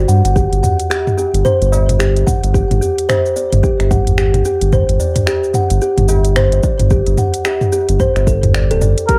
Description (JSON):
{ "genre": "organic downtempo", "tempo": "110 BPM", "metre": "4/4", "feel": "swing 59% on 16ths", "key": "unclear", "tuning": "A4 = 441 Hz", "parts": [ { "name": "kalimba", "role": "arpeggios", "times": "0.0-9.2 s", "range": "G4 to F#5", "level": "-19 LUFS", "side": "equal", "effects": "delay" }, { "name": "round analog bass", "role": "bass", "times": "0.0-9.0 s", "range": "D1 to G2", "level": "-16 LUFS", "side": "equal", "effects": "tube saturation, sidechain pumping" }, { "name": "organic electronic drum kit", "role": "drums", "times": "0.1-9.2 s", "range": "finger snaps, hi-hat, shaker, toms", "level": "-21 LUFS", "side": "equal", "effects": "none" }, { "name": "electronic kick drum", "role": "drums", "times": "0.4-9.2 s", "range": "none", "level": "-19 LUFS", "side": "equal", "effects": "none" }, { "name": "tabla", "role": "percussion", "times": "0.4-8.5 s", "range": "none", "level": "-26 LUFS", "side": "equal", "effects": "none" }, { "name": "trumpet with cup mute", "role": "melody", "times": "9.1-9.2 s", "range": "Bb4", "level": "-16 LUFS", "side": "equal", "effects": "none" } ], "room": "light reverb", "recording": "none", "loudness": "-14 LUFS", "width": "mono", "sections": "0.0-9.1 A section", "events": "none", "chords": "0.0 N.C.; 4.7 Dsus4" }